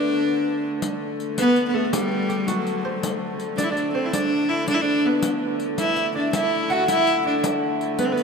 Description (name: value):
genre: medieval dance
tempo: 109 BPM (dotted quarters)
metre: 6/8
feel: straight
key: D mixolydian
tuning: A4 = 440 Hz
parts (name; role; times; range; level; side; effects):
- clear viola da gamba; melody; 0.0-8.2 s; F#3 to F#4; -22 LUFS; equal; none
- concert harp; second line; 0.0-8.2 s; F#4 to F#5; -26 LUFS; right 2 dB; none
- clear hurdy-gurdy; drone; 0.0-8.2 s; D3 to A3; -30 LUFS; left 2 dB; stereo widening
- riq; percussion; 0.8-8.2 s; none; -31 LUFS; left 4 dB; none
room: wet cathedral reverb, RT60 4.8 s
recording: in a vast, echoing space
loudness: -20 LUFS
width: side -5 dB against mid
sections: 0.8-8.2 A section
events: none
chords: none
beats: 0.27 | 0.82 1.37 | 1.93 2.48 | 3.03 3.58 | 4.13 4.68 | 5.23 5.78 | 6.33 6.88 | 7.43 7.99